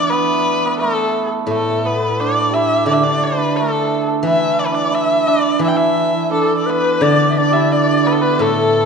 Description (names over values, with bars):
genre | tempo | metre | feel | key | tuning
chinese traditional, Chinese chamber ensemble | 87 BPM | 2/4 | rubato | D zhi mode | A4 = 440 Hz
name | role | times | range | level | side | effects
warm erhu | melody | 0.0-8.9 s | A4 to G5 | -18 LUFS | left 4 dB | none
hammered dulcimer | second line | 0.0-8.9 s | A3 to G4 | -18 LUFS | right 7 dB | none
steel-string zither | accompaniment | 0.0-8.9 s | A2 to E3 | -21 LUFS | left 4 dB | none
bright large dizi | second line | 6.3-8.9 s | A4 to E5 | -18 LUFS | left 4 dB | none
room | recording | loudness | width
moderate recital hall reverb, RT60 1.4 s | nothing above 10.7 kHz | -14 LUFS | side -5 dB against mid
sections
0.0-7.0 A section; 7.0-8.9 B section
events
none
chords
none